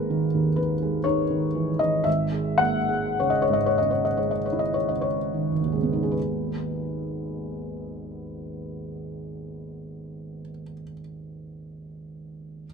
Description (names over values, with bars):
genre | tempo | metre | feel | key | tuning
classical, romantic nocturne for solo piano | 34-63 BPM | 3/4 | rubato | G# minor | A4 = 440 Hz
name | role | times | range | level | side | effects
felt-muted upright piano | solo | 0.0-12.7 s | G#1 to F#5 | -24 LUFS | equal | none
room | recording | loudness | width
light reverb | close, detailed microphones | -22 LUFS | side -5 dB against mid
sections
0.0-6.2 A section; 6.2-10.4 B section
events
slowing down 0.0-6.2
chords
0.0 G#5; 2.1 C#m/G#; 6.2 G#m